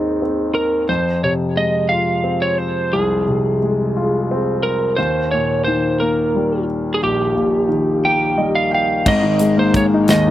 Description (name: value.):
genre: six-eight pop ballad.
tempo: 59 BPM (dotted quarters).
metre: 6/8.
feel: straight.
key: Ab major.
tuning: A4 = 440 Hz.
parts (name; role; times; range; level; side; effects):
lightly driven lead guitar; melody; 0.0-10.3 s; G4 to G5; -18 LUFS; right 1 dB; none.
clear concert grand piano; accompaniment; 0.0-10.3 s; Ab1 to G5; -18 LUFS; left 1 dB; none.
modern studio drum kit; drums; 9.1-10.2 s; crash cymbal, hi-hat, kick drum, snare drum; -19 LUFS; equal; none.
room: little or no reverb.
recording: recorded outdoors, with no room sound.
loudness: -15 LUFS.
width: side -13 dB against mid.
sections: 0.0-9.1 A section; 9.1-10.3 B section.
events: grand piano fill 8.0-9.1.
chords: 0.0 Ab; 0.9 Fm; 5.0 Eb; 9.1 Absus2.